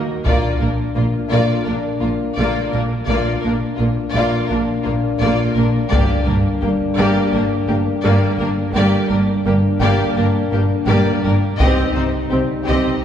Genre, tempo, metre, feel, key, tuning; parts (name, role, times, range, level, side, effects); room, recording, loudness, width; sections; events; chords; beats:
cinematic, epic orchestral film score; 85 BPM; 4/4; straight; A4 = 440 Hz
dark French horn section; sustained chords; 0.0-13.0 s; G3 to Gb4; -23 LUFS; left 5 dB
rich studio violin section; melody; 0.2-13.0 s; F4 to Eb5; -26 LUFS; left 3 dB
clear symphonic violin section; second line; 0.3-13.0 s; Bb3 to G4; -26 LUFS; left 2 dB
rich symphonic viola section; accompaniment; 0.3-13.0 s; Bb3 to C4; -23 LUFS; right 1 dB
rich chamber double bass section; bass; 0.3-12.8 s; G1 to C2; -21 LUFS; right 2 dB
rich symphonic cello section; bass; 0.3-12.8 s; G2 to C3; -22 LUFS; right 2 dB
solo taiko drums; drums; 0.3-1.6, 5.9-7.3, 11.6-13.0 s; -20 LUFS; equal
wet scoring stage reverb, RT60 2.1 s; heard from further back in the room; -15 LUFS; side -9 dB against mid
0.0-13.0 A section
build-up 0.0-13.0
0.2 Bb; 5.9 Gm; 11.6 Cm
| 0.25 0.96 1.67 2.37 | 3.08 3.79 4.50 5.21 | 5.92 6.62 7.33 8.04 | 8.76 9.46 10.17 10.89 | 11.60 12.31 13.03